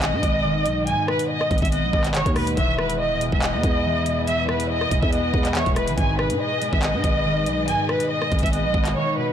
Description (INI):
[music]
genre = hip hop, drill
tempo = 141 BPM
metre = 4/4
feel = half-time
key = G# minor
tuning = A4 = 437 Hz
[part]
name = rich studio violin section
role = melody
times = 0.0-9.3 s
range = B4 to G#5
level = -24 LUFS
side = right 1 dB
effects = low-pass filter, ping-pong delay
[part]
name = concert harp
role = accompaniment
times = 0.0-9.3 s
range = E2 to B3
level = -26 LUFS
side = left 2 dB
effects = low-pass filter
[part]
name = growling 808-style bass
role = bass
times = 0.0-9.0 s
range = D#1 to G#2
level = -26 LUFS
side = equal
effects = none
[part]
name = drill drum kit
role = drums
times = 0.0-8.9 s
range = handclaps, hi-hat, kick drum, rim click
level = -24 LUFS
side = equal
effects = soft clipping on snare
[part]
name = dark symphonic string section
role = sustained chords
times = 2.6-9.3 s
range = E3 to D#5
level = -32 LUFS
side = left 3 dB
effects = none
[sound]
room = light reverb, small room ambience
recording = blown-out, overdriven recording, overdrive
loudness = -19 LUFS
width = side -9 dB against mid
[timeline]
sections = 0.0-9.3 A section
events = drums muted 9.0-9.3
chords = 0.0 G#m; 2.6 E; 6.0 G#m